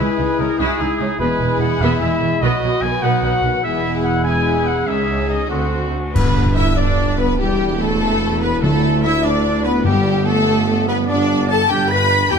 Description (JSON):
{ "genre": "cinematic, heroic adventure film score", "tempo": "98 BPM (dotted quarters)", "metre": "6/8", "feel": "straight", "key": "G major from 6.1 s", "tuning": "A4 = 437 Hz", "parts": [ { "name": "warm symphonic violin section", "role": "melody", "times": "0.0-12.4 s", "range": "F#4 to B5", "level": "-28 LUFS", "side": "left 4 dB", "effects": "none" }, { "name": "dark clarinet", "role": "second line", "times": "0.0-12.4 s", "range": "B3 to A4", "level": "-26 LUFS", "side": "left 3 dB", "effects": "none" }, { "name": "hollow concert flute", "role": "second line", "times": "0.0-12.4 s", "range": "G5 to B6", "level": "-29 LUFS", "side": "left 2 dB", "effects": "none" }, { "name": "rich studio violin section", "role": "second line", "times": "0.0-12.4 s", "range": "D4 to B5", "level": "-25 LUFS", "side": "left 3 dB", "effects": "none" }, { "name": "warm oboe", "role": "second line", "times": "0.0-5.8 s", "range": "D#4 to G#4", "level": "-31 LUFS", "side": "right 1 dB", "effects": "none" }, { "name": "rich symphonic viola section", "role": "accompaniment", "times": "0.0-12.4 s", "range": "D#3 to B4", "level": "-25 LUFS", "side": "right 1 dB", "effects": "none" }, { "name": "mellow French horn section", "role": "sustained chords", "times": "0.0-12.4 s", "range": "D#3 to B4", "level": "-25 LUFS", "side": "left 6 dB", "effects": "none" }, { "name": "mellow trumpet section", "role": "stabs", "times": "0.0-12.4 s", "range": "F#4 to B5", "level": "-23 LUFS", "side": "equal", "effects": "none" }, { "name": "clear symphonic double bass section", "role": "bass", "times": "0.0-12.4 s", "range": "E1 to G2", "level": "-23 LUFS", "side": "right 4 dB", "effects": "none" }, { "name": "rich symphonic cello section", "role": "bass", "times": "0.0-12.4 s", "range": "C#2 to B4", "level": "-24 LUFS", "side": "right 3 dB", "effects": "none" }, { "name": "cymbal swell, clash cymbals and concert bass drum", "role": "percussion", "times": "3.6-6.9 s", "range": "none", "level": "-23 LUFS", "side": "left 1 dB", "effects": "none" }, { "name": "mellow tuba", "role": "bass", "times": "6.1-12.4 s", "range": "E1 to D2", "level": "-24 LUFS", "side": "right 4 dB", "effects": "none" }, { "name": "timpani", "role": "percussion", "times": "6.2-10.4 s", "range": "G2 to D3", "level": "-22 LUFS", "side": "left 1 dB", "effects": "none" } ], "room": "moderate concert hall reverb, RT60 1.8 s", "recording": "none", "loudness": "-15 LUFS", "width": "side -6 dB against mid", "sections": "0.0-6.1 A section; 6.1-12.4 B section", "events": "band accent 6.1-6.6", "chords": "0.0 C#madd9; 1.2 E; 2.4 B; 3.6 E; 4.9 C#madd9; 5.5 D7; 6.1 G; 7.4 Em; 8.6 D5; 9.9 G", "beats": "0.60 | 1.21 1.81 | 2.42 3.03 | 3.64 4.26 | 4.88 5.51 | 6.15 6.77 | 7.39 8.01 | 8.63 9.24 | 9.85 10.47 | 11.08 11.69 | 12.30" }